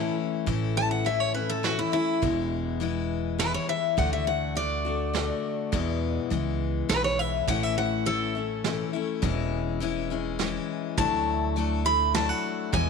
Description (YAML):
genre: honky-tonk and classic country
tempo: 103 BPM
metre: 3/4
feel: straight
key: A major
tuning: A4 = 440 Hz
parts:
  - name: picked steel-string acoustic guitar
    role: melody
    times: 0.0-12.9 s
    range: E4 to B5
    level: -27 LUFS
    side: left 1 dB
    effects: none
  - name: picked steel-string acoustic guitar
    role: accompaniment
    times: 0.0-12.9 s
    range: E2 to F#4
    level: -29 LUFS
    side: left 10 dB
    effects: none
  - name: upright bass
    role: bass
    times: 0.0-12.9 s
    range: E1 to E2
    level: -31 LUFS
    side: right 2 dB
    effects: none
  - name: vintage brush drum kit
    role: drums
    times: 0.5-12.9 s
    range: hi-hat, kick drum, snare drum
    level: -32 LUFS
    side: right 8 dB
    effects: none
room: light reverb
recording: 1960s-style stereo with parts hard left and right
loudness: -24 LUFS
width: side -5 dB against mid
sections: 0.5-12.9 A section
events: steel-string acoustic guitar solo 0.5-12.9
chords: 0.5 A; 2.2 E; 4.0 D; 5.7 E; 7.5 A; 9.2 E6; 11.0 Dadd9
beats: | 0.48 1.06 1.65 | 2.23 2.81 3.40 | 3.98 4.57 5.15 | 5.73 6.32 6.90 | 7.48 8.07 8.65 | 9.23 9.82 10.40 | 10.98 11.57 12.15 | 12.74